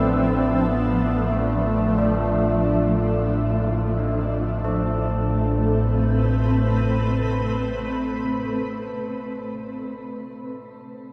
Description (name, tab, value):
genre	dark ambient drone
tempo	free time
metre	none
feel	none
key	A minor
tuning	A4 = 440 Hz
part	dark duduk	melody	0.0-3.3 s	A3 to C4	-28 LUFS	equal	shimmer reverb, analog delay
part	granular cloud pad	sustained chords	0.0-9.9 s	F3 to E5	-27 LUFS	equal	built-in reverb, lush chorus, shimmer reverb
part	carillon bells	arpeggios	0.0-9.8 s	D4 to B4	-33 LUFS	equal	shimmer reverb, analog delay
part	deep rumbling drone	drone	0.0-9.5 s	A1 to A2	-26 LUFS	equal	built-in reverb, subtle chorus
room	wet cathedral reverb, RT60 5.9 s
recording	dreamy mix soaked in reverb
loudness	-22 LUFS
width	mono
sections	0.0-4.6 A section; 4.6-9.8 B section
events	none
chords	0.0 Dmadd9/A; 4.6 Amadd9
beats	free time